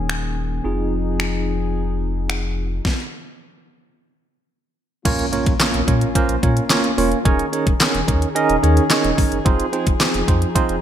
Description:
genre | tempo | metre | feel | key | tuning
dance-pop | 109 BPM | 4/4 | straight | Bb minor | A4 = 439 Hz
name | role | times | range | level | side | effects
tine electric piano | accompaniment | 0.0-10.8 s | Bb3 to Eb5 | -21 LUFS | right 5 dB | medium tremolo, sidechain pumping, low-pass filter
mellow brass ensemble | sustained chords | 0.0-10.8 s | Eb3 to Ab4 | -28 LUFS | left 6 dB | sidechain pumping, low-pass filter
warm sub bass | bass | 0.0-10.8 s | Eb1 to Bb2 | -22 LUFS | left 1 dB | sidechain pumping
downlifter and impact | sound effects | 0.0-0.6, 5.1-7.3 s | none | -32 LUFS | left 2 dB | none
pop drum kit | drums | 0.1-10.8 s | crash cymbal, finger snaps, handclaps, hi-hat, kick drum, snare drum | -19 LUFS | left 1 dB | overdrive, gated reverb
group handclap | percussion | 5.6-10.1 s | none | -33 LUFS | left 7 dB | none
room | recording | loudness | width
light reverb | bright 1980s-style digital production | -16 LUFS | side -10 dB against mid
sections
0.0-5.1 A section; 5.1-10.8 B section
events
stop 2.9-5.1; drop 5.1-10.8; impact 5.1-7.3; tine electric piano fill 8.6-9.5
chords
0.0 Eb7sus4; 0.6 Fm7; 2.9 N.C.; 5.1 Bbm; 7.3 Eb7sus4; 9.5 Fm7

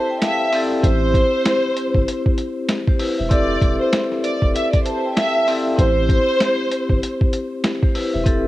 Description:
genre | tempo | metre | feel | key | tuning
hip hop, boom-bap hip-hop | 97 BPM | 4/4 | swing 60% on 16ths | A minor | A4 = 442 Hz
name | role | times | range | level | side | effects
warm studio violin section | melody | 0.0-7.2 s | C5 to E5 | -21 LUFS | equal | high-pass filter, low-pass filter, tape echo
vibraphone with medium hard mallets | accompaniment | 0.0-8.5 s | C4 to A5 | -22 LUFS | left 2 dB | cassette tape, high-pass filter, low-pass filter
lo-fi sampler-style drum kit | drums | 0.2-8.4 s | hi-hat, kick drum, snare drum | -19 LUFS | equal | cassette tape
soft dub sub bass | bass | 0.8-8.5 s | E1 to A1 | -23 LUFS | equal | none
room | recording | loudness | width
studio ambience | home recording on cassette | -16 LUFS | side -16 dB against mid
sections
0.0-8.5 A section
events
none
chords
0.0 Fmaj9; 0.8 Am7; 3.3 Fmaj9; 5.8 Am7

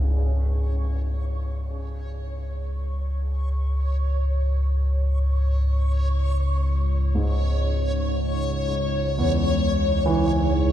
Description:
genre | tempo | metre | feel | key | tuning
dark ambient drone | free time | none | none | C# minor | A4 = 438 Hz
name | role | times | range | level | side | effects
dark concert grand piano | arpeggios | 0.0-10.7 s | E2 to E3 | -29 LUFS | right 3 dB | diffuse ambient delay
analog drone | drone | 0.0-10.7 s | C#2 to G#2 | -22 LUFS | equal | wide subtle chorus
backwards swelling texture | texture | 0.1-10.7 s | C#5 | -30 LUFS | left 2 dB | built-in reverb
room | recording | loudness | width
moderate huge ambient reverb, RT60 8.3 s | in a vast, echoing space, small room reverb | -21 LUFS | side -11 dB against mid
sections
0.0-10.7 A section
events
fade-in on synth texture 0.0-10.7; filter sweep on synth drone 0.0-10.7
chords
0.0 C#m

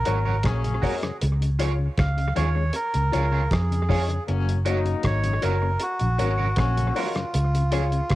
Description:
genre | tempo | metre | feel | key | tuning
roots reggae | 78 BPM | 4/4 | straight | F# major | A4 = 440 Hz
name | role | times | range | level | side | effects
melodica | melody | 0.0-8.2 s | E#4 to E#5 | -28 LUFS | right 1 dB | cassette tape, dub echo
vintage muted fingered electric bass | bass | 0.0-8.2 s | F#1 to E#2 | -23 LUFS | equal | none
warm horn section | second line | 0.1-7.1 s | F#3 to D#4 | -33 LUFS | left 6 dB | cassette tape, dub echo
electric guitar at the edge of break-up | accompaniment | 0.1-7.8 s | E#4 to C#5 | -33 LUFS | right 7 dB | lush chorus, cassette tape, dub echo
mellow tonewheel organ | accompaniment | 0.1-8.0 s | F#2 to C#4 | -34 LUFS | left 6 dB | overdrive, slow rotary speaker, cassette tape
dark concert grand piano | stabs | 0.1-7.9 s | E#4 to C#5 | -31 LUFS | left 6 dB | cassette tape
cloth-damped thuddy drum kit | drums | 0.1-8.2 s | hi-hat, kick drum, rim click | -28 LUFS | equal | analog delay
room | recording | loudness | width
light reverb | home recording on cassette | -21 LUFS | side -16 dB against mid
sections
0.0-8.2 A section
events
none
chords
0.0 F#; 1.2 C#; 4.3 F#; 7.3 C#

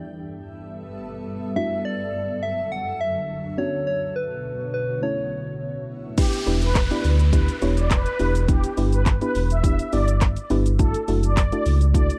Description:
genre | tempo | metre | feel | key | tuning
dance-pop | 104 BPM | 4/4 | straight | unclear | A4 = 442 Hz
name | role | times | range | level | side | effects
soft struck synth lead | melody | 0.0-5.9 s | B4 to F#5 | -29 LUFS | equal | chorus, tape echo
soft round pluck | accompaniment | 0.0-12.2 s | F#2 to D5 | -29 LUFS | equal | chorus, sidechain pumping
granular cloud pad | sustained chords | 0.0-6.2 s | F#2 to E5 | -34 LUFS | equal | built-in reverb, sidechain pumping
filtered supersaw swell | melody | 6.2-12.1 s | G4 to E5 | -31 LUFS | equal | sidechain pumping, tape echo
house drum kit | drums | 6.2-12.2 s | crash cymbal, handclaps, hi-hat, kick drum, shaker | -24 LUFS | equal | none
downlifter | sound effects | 6.2-10.8 s | none | -38 LUFS | equal | none
sub bass with octave | bass | 6.5-12.1 s | E1 to D2 | -23 LUFS | equal | sidechain pumping
room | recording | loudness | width
little or no reverb | dry, close 1970s-style studio recording | -22 LUFS | mono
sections
0.0-6.2 A section; 6.2-12.2 B section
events
drop 6.2-12.2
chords
0.0 G6; 1.6 Dadd9/F#; 3.6 Bmadd9; 5.0 A; 6.2 Em7; 8.5 G6; 10.8 Dadd9/F#

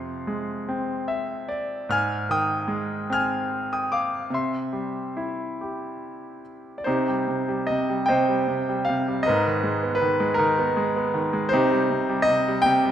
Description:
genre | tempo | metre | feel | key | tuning
classical, lyrical solo piano | 46-54 BPM (dotted quarters) | 6/8 | rubato | C minor from 6.9 s | A4 = 440 Hz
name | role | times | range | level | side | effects
bright concert grand piano | solo | 0.0-12.9 s | F2 to F6 | -22 LUFS | equal | none
room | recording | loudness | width
moderate concert hall reverb, RT60 2.3 s | minimal, uncompressed stereo recording | -22 LUFS | side -10 dB against mid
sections
0.0-6.9 A section; 6.9-12.9 B section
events
grand piano fill 0.7-1.9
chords
0.0 Fm; 1.9 Ab; 4.3 C; 6.9 Cm; 9.3 Abmadd9; 11.5 Cm

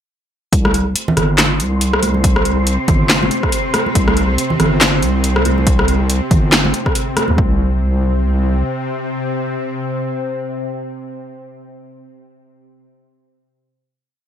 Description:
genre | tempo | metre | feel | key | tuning
deep dubstep | 140 BPM | 4/4 | swing 57% on 16ths, half-time | unclear | A4 = 440 Hz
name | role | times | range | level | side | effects
bowed-like drone | sustained chords | 1.6-11.6 s | C3 to C4 | -23 LUFS | equal | built-in reverb
wobble bass | bass | 0.5-8.6 s | G1 to Eb2 | -16 LUFS | equal | chorus
deep house drum kit | drums | 0.5-7.3 s | handclaps, hi-hat, rim click, snare drum | -16 LUFS | equal | overdrive
electronic kick drum | drums | 0.5-7.5 s | none | -16 LUFS | equal | overdrive
wind-like tuned noise texture | texture | 1.1-7.4 s | C4 to C5 | -26 LUFS | left 1 dB | built-in reverb, wide subtle chorus
congas | percussion | 0.7-7.4 s | none | -22 LUFS | right 2 dB | dub echo
room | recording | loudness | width
light reverb | bright 1980s-style digital production | -13 LUFS | side -9 dB against mid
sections
0.5-7.4 drop; 7.4-10.8 final chord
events
drop 0.5-7.4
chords
0.5 C5; 7.4 N.C.

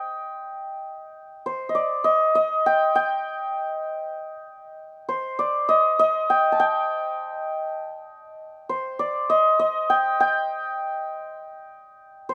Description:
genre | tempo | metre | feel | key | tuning
indian classical | 100 BPM | 3/4 | straight | C raga shivaranjani | A4 = 440 Hz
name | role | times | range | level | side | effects
santur | solo | 0.0-12.3 s | C5 to A5 | -24 LUFS | equal | none
room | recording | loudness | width
moderate studio ambience, RT60 0.5 s | none | -23 LUFS | mono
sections
0.0-10.2 A section; 10.2-12.3 B section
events
none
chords
none

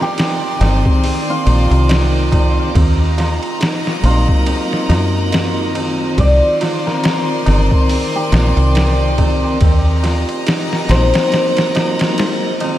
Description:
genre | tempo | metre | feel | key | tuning
trip hop | 70 BPM | 4/4 | swing 58% on 16ths | C minor | A4 = 442 Hz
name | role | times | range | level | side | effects
cimbalom | melody | 0.0-12.8 s | F4 to D5 | -21 LUFS | left 1 dB | tape echo
clear studio violin section | sustained chords | 0.0-12.8 s | D5 to C6 | -25 LUFS | equal | none
felt-muted upright piano | arpeggios | 0.0-12.8 s | C4 to F4 | -24 LUFS | right 2 dB | tape echo
trip hop sampler-style drum kit | drums | 0.0-12.8 s | hi-hat, kick drum, ride cymbal, snare drum | -18 LUFS | equal | none
tabla | percussion | 0.2-12.8 s | none | -30 LUFS | left 1 dB | none
tonewheel organ | accompaniment | 0.6-12.8 s | Eb3 to D5 | -22 LUFS | equal | overdrive, stopped rotary speaker, tremolo, tape echo
deep dub fingered electric bass | bass | 0.6-11.1 s | G1 to Gb2 | -14 LUFS | equal | tube saturation
room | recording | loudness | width
moderate huge ambient reverb, RT60 8.2 s | dreamy mix soaked in reverb | -12 LUFS | side -13 dB against mid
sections
0.0-12.8 A section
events
kick drops out 11.3-12.8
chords
0.0 Cmadd9; 2.7 Ebm; 6.2 Cmadd9; 9.6 Ebm

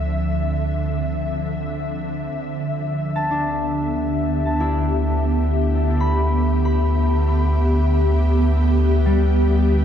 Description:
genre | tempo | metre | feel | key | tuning
ambient | free time | none | none | unclear | A4 = 440 Hz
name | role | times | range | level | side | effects
ethereal airy pad | sustained chords | 0.0-9.8 s | D3 to E5 | -22 LUFS | equal | ensemble chorus, built-in reverb
round analog bass | bass | 0.0-9.8 s | D2 | -20 LUFS | equal | none
concert harp | arpeggios | 3.2-9.8 s | G3 to B5 | -25 LUFS | left 1 dB | tape echo
room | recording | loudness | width
moderate huge ambient reverb, RT60 7.8 s | none | -18 LUFS | side -9 dB against mid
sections
0.0-9.8 A section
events
none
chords
0.0 Dm9; 2.3 Em/D

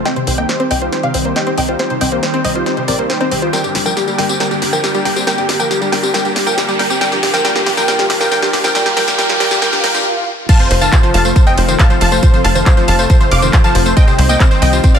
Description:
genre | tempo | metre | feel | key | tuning
uplifting trance | 138 BPM | 4/4 | straight | unclear | A4 = 440 Hz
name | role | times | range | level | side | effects
wide unison pluck | melody | 0.0-15.0 s | Eb4 to D6 | -17 LUFS | equal | sidechain pumping, tape echo
supersaw stab | second line | 0.0-15.0 s | G4 to D6 | -24 LUFS | right 1 dB | none
riser and swell | sound effects | 1.0-10.5 s | none | -23 LUFS | right 1 dB | none
analog string pad | sustained chords | 0.1-15.0 s | C3 to G4 | -20 LUFS | left 1 dB | ensemble chorus, sidechain pumping
analog pluck | arpeggios | 0.1-15.0 s | F2 to F4 | -22 LUFS | left 2 dB | chorus, sidechain pumping, ping-pong delay
house drum kit | drums | 0.1-15.0 s | crash cymbal, handclaps, hi-hat, ride cymbal, snare drum, tambourine | -19 LUFS | left 1 dB | high-pass filter on snare, high-pass filter on hats, high-pass filter on perc, high-pass filter on cymbals
tight sequencer bass | bass | 0.3-14.8 s | F1 to C2 | -17 LUFS | equal | sidechain pumping
electronic kick drum | drums | 10.5-14.9 s | none | -10 LUFS | equal | none
room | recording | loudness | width
light reverb | high-pass filter | -11 LUFS | side -8 dB against mid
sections
0.0-10.5 A section; 10.5-15.0 B section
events
build-up 0.0-10.5; drum fill 0.0-10.1; filter sweep on synth pluck 0.0-10.5; filter sweep 0.0-10.5; riser 1.0-10.1; swell 9.6-10.5; stop 10.1-10.5; drop 10.5-15.0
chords
0.1 Cm; 3.5 Gm; 7.0 Bb; 10.5 F; 14.0 Cm

